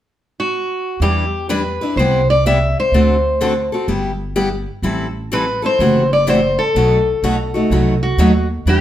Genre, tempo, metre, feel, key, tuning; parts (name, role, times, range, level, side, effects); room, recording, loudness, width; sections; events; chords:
acoustic string swing (jazz manouche); 126 BPM; 4/4; swing 64% on 8ths; A4 = 440 Hz
picked steel-string acoustic guitar; melody; 0.4-8.8 s; F#4 to E5; -17 LUFS; left 1 dB
picked steel-string acoustic guitar; accompaniment; 1.0-8.8 s; B2 to B4; -18 LUFS; left 1 dB
upright bass; bass; 1.0-8.8 s; F#1 to E2; -19 LUFS; right 1 dB
wet studio reverb, RT60 0.9 s; heard from further back in the room; -14 LUFS; side -12 dB against mid
0.0-1.0 A section; 1.0-8.8 B section
0.0 N.C.; 1.0 Em7; 2.0 Cmaj7; 2.9 D7; 3.9 G6; 4.8 Am7; 5.8 F#m7b5; 6.8 B7